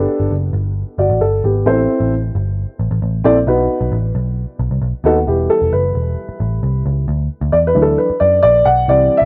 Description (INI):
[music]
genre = uptempo 1960s-style soul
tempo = 133 BPM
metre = 4/4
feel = straight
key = E minor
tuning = A4 = 440 Hz
[part]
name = dark upright piano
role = accompaniment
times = 0.0-9.3 s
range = E3 to F#5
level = -16 LUFS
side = equal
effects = none
[part]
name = vintage muted picked electric bass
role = bass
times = 0.0-9.3 s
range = E1 to F#2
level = -20 LUFS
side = equal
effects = none
[sound]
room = light reverb, small room ambience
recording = none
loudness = -16 LUFS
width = mono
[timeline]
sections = 0.0-5.3 A section; 5.3-9.3 B section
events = upright piano solo 5.3-9.3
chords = 0.0 Gadd9; 1.7 Am; 3.5 B; 5.3 Em; 7.1 Dadd9